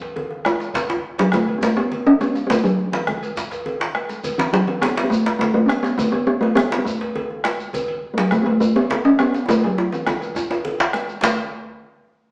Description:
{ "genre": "west african traditional, West African drum ensemble", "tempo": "137 BPM (dotted quarters)", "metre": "12/8", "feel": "straight", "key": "A major pentatonic", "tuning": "A4 = 441 Hz", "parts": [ { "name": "talking drum", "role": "melody", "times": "0.0-11.4 s", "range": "E3 to C#4", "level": "-17 LUFS", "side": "equal", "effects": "none" }, { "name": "cowbell", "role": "percussion", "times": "0.0-11.4 s", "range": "none", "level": "-29 LUFS", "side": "equal", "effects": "none" }, { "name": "djembe", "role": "percussion", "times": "0.0-11.4 s", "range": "none", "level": "-33 LUFS", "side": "equal", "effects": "none" }, { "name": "congas", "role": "percussion", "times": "0.2-11.4 s", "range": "none", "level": "-33 LUFS", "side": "equal", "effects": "none" }, { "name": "bombo", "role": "percussion", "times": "0.5-11.4 s", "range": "none", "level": "-27 LUFS", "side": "equal", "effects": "none" }, { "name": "djembe", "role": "percussion", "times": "0.5-11.4 s", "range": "none", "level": "-23 LUFS", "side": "equal", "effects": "none" }, { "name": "shekere", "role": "percussion", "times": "0.5-11.4 s", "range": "none", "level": "-38 LUFS", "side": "equal", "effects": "none" } ], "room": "wet large studio reverb, RT60 1.2 s", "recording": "band playing live in one room, small speaker sound", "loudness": "-17 LUFS", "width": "side -31 dB against mid", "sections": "0.0-11.2 A section; 11.2-12.3 B section", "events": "drum fill 3.8-4.2, 9.5-11.2", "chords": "none" }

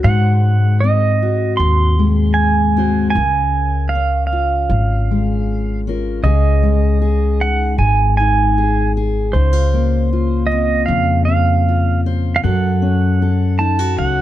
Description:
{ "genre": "acoustic folk duo or small band", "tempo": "78 BPM", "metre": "4/4", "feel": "straight", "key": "Db major", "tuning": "A4 = 440 Hz", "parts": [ { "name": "pedal steel guitar", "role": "melody", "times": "0.0-14.2 s", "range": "C5 to C6", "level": "-19 LUFS", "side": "right 6 dB", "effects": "plate reverb" }, { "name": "fingerpicked steel-string acoustic guitar", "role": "accompaniment", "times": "0.0-14.2 s", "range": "Ab2 to C5", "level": "-20 LUFS", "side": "left 5 dB", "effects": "none" }, { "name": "upright bass", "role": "bass", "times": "0.0-14.2 s", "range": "Ab1 to Ab2", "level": "-16 LUFS", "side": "equal", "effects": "none" } ], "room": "light reverb", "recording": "dark, warm production", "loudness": "-13 LUFS", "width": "side -13 dB against mid", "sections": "0.0-6.3 A section; 6.3-14.2 B section", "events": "none", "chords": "0.1 Ab7; 3.2 Db6; 6.3 Dbsus2; 9.3 Bbmadd9/Db; 12.4 Gbm" }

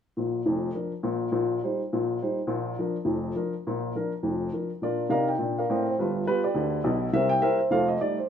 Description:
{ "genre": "jazz, stride piano", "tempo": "207 BPM", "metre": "4/4", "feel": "swing 62% on 8ths", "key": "Bb major", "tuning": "A4 = 444 Hz", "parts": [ { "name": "dark upright piano", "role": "solo", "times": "0.2-8.3 s", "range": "F1 to G5", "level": "-24 LUFS", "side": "equal", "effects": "none" } ], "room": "wet studio reverb, RT60 0.9 s", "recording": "heard from further back in the room", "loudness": "-24 LUFS", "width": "side -8 dB against mid", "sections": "0.2-4.8 A section; 4.8-8.3 B section", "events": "none", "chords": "0.2 Bb; 1.3 Cm7/Bb; 2.5 Bb; 6.0 G7; 7.1 C7; 7.7 F9" }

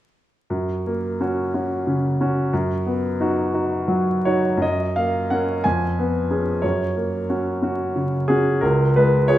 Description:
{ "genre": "classical, romantic character piece for solo piano", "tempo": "60 BPM (dotted quarters)", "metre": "6/8", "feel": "rubato", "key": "F# major", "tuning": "A4 = 440 Hz", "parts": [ { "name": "clear grand piano", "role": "solo", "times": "0.5-9.4 s", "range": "C#2 to G#5", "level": "-19 LUFS", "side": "equal", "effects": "none" } ], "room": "wet recital hall reverb, RT60 1.3 s", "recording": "minimal, uncompressed stereo recording, vinyl crackle", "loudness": "-19 LUFS", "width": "side -13 dB against mid", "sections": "0.5-4.6 A section; 4.6-9.4 B section", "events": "none", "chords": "0.5 F#; 2.5 B/F#; 4.6 F#; 5.6 C#7/E#; 6.6 F#; 8.6 C#5" }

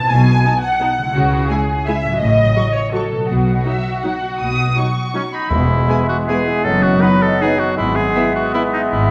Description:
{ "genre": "classical, orchestral ballroom waltz", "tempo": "150-185 BPM", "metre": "3/4", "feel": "rubato", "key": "E major", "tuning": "A4 = 444 Hz", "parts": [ { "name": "muted studio violin section", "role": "second line", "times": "0.0-8.6 s", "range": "D#4 to G#5", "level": "-22 LUFS", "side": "equal", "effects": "none" }, { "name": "concert harp", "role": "arpeggios", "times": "0.0-9.1 s", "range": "E2 to D#5", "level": "-26 LUFS", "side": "equal", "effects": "none" }, { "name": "muted studio cello section", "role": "bass", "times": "0.1-9.1 s", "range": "E2 to C#3", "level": "-24 LUFS", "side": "equal", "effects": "none" }, { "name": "muted studio double bass section", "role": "bass", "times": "0.1-9.1 s", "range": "E1 to C#2", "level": "-23 LUFS", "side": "equal", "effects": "none" }, { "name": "muted studio viola section", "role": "accompaniment", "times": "0.4-8.6 s", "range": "F#3 to F#4", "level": "-30 LUFS", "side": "equal", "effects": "none" }, { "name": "muted studio violin section", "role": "melody", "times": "0.5-8.6 s", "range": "E5 to D#6", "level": "-29 LUFS", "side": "equal", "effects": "none" }, { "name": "clear oboe", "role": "second line", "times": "5.1-9.1 s", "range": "C#4 to B4", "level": "-22 LUFS", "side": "equal", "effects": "none" }, { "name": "bright clarinet", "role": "second line", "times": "5.5-9.1 s", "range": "B3", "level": "-26 LUFS", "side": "equal", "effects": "none" }, { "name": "bright large flute ensemble", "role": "second line", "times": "5.5-9.1 s", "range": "D#5 to E5", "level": "-29 LUFS", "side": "equal", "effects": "none" }, { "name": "warm bassoon", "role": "accompaniment", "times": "5.5-9.1 s", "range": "F#3 to G#3", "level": "-25 LUFS", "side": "equal", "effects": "none" }, { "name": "timpani", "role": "percussion", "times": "5.5-6.0 s", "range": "E2", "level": "-27 LUFS", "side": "equal", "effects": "none" }, { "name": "mellow French horn section", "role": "sustained chords", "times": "5.9-8.7 s", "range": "B3 to G#4", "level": "-28 LUFS", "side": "equal", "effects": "none" } ], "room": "wet scoring stage reverb, RT60 1.8 s", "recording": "none", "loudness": "-16 LUFS", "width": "mono", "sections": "0.0-5.5 A section; 5.5-9.1 B section", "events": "none", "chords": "0.1 B7; 1.2 C#m; 2.2 F#m/A; 3.3 B; 5.5 E; 6.6 B/F#; 7.8 E/G#" }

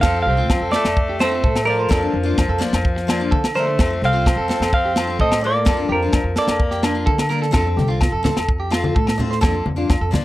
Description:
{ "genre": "highlife guitar band", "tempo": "128 BPM", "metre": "4/4", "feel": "straight", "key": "F major", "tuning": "A4 = 440 Hz", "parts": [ { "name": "semi-hollow electric guitar", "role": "melody", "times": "0.0-7.3 s", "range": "Bb4 to F5", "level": "-22 LUFS", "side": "right 2 dB", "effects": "none" }, { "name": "raspy tenor saxophone", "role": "second line", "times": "0.0-7.3 s", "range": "F3 to C4", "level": "-26 LUFS", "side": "left 3 dB", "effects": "none" }, { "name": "picked steel-string acoustic guitar", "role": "accompaniment", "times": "0.0-10.2 s", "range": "F3 to F4", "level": "-26 LUFS", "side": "left 6 dB", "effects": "none" }, { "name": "clean electric guitar", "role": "arpeggios", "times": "0.0-10.2 s", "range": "C4 to D5", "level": "-25 LUFS", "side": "right 3 dB", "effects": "harmonic tremolo, tape echo" }, { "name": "upright bass", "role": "bass", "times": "0.0-10.1 s", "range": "C2 to D3", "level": "-23 LUFS", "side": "equal", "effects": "none" }, { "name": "tight funk drum kit", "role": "drums", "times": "0.0-10.2 s", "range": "crash cymbal, kick drum, snare drum", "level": "-20 LUFS", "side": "equal", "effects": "none" }, { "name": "agogo bells", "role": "percussion", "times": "0.0-10.0 s", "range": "none", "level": "-29 LUFS", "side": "left 3 dB", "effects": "none" }, { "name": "congas", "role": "percussion", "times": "7.5-10.2 s", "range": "none", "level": "-23 LUFS", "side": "left 1 dB", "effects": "none" } ], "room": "little or no reverb", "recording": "dry, close 1970s-style studio recording", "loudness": "-16 LUFS", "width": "side -16 dB against mid", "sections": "0.0-10.2 A section", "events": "none", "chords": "0.0 F; 1.9 Bb/F; 3.8 F; 5.7 Bb/F; 7.5 F; 9.4 Bb/F" }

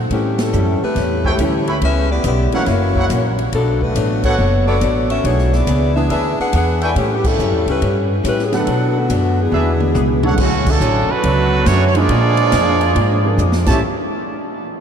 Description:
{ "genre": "jazz, big band swing", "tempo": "140 BPM", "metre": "4/4", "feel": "swing 67% on 8ths", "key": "unclear", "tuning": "A4 = 440 Hz", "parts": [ { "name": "upright bass", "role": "bass", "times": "0.0-13.8 s", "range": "F#1 to B2", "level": "-18 LUFS", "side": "equal", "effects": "none" }, { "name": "clear saxophone section", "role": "melody", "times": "0.1-10.3 s", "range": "D3 to G#5", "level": "-20 LUFS", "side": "left 2 dB", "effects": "ping-pong delay" }, { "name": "archtop guitar, miked and amplified", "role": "accompaniment", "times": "0.1-13.8 s", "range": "F#2 to G#4", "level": "-24 LUFS", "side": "left 3 dB", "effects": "wide subtle chorus" }, { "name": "swinging big-band drum kit", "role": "drums", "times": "0.1-13.7 s", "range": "crash cymbal, hi-hat, kick drum, ride cymbal, snare drum, toms", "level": "-24 LUFS", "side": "right 1 dB", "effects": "none" }, { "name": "warm baby grand piano", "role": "accompaniment", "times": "0.5-2.7, 6.0-13.8 s", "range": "D3 to G#4", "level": "-27 LUFS", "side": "right 3 dB", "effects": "none" }, { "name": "warm trumpet section", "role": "stabs", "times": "1.2-10.3 s", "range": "D4 to B5", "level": "-27 LUFS", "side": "right 2 dB", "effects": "none" }, { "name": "mellow trombone section", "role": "second line", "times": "9.4-13.8 s", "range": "A2 to D4", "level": "-21 LUFS", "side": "right 4 dB", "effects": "none" }, { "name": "clear trumpet section", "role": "melody", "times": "10.4-13.8 s", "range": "F#3 to A5", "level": "-19 LUFS", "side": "right 3 dB", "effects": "ping-pong delay" } ], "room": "wet cathedral reverb, RT60 6.2 s", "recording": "dreamy mix soaked in reverb", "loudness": "-14 LUFS", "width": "side -7 dB against mid", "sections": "0.0-10.4 A section; 10.4-13.8 B section", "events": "band accent 0.3, 4.2, 7.2, 10.6; drum fill 9.5-10.4, 13.4-13.8", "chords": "0.1 A7; 1.8 C#m7; 2.7 F#7; 3.5 Bm7; 5.2 E7; 7.0 A7; 8.7 Bm7; 9.5 E7; 10.4 Dmaj7; 12.1 Bb7; 13.6 A7; 13.8 N.C." }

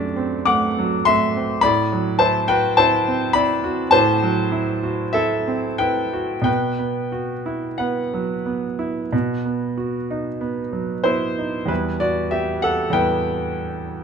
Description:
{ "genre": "classical, romantic nocturne for solo piano", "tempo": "45-53 BPM", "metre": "4/4", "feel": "rubato", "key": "E minor", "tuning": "A4 = 436 Hz", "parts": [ { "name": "warm concert grand piano", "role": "solo", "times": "0.0-14.0 s", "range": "E2 to D6", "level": "-18 LUFS", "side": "equal", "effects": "none" } ], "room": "light reverb", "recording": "close, detailed microphones", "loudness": "-18 LUFS", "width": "side -6 dB against mid", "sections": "0.0-11.7 A section; 11.7-14.0 B section", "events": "none", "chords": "0.0 D7/F#; 1.6 F#m7b5/A; 6.5 Bsus4; 9.1 B; 11.7 Em" }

